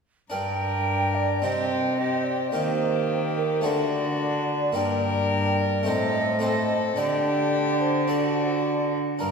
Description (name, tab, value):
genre	classical, renaissance-style consort dance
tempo	108 BPM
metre	4/4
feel	straight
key	G harmonic minor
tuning	A4 = 440 Hz
part	rich violin	melody	0.3-9.3 s	F#4 to Bb4	-30 LUFS	left 4 dB	none
part	mellow hollow tenor recorder	second line	0.3-9.3 s	Bb4 to Bb5	-27 LUFS	right 3 dB	none
part	harpsichord	accompaniment	0.3-9.3 s	G2 to C5	-32 LUFS	left 2 dB	none
part	mellow bassoon	accompaniment	0.3-9.3 s	Bb3 to D4	-30 LUFS	left 1 dB	none
part	rich cello	bass	0.3-9.3 s	G2 to Eb3	-27 LUFS	equal	none
room	wet church reverb, RT60 2.8 s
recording	minimal, uncompressed stereo recording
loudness	-22 LUFS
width	side -5 dB against mid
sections	0.3-9.3 A section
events	none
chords	0.3 Gm; 1.4 Cm; 2.5 Eb; 3.7 D; 4.8 Gm; 5.9 Adim; 7.0 Dsus4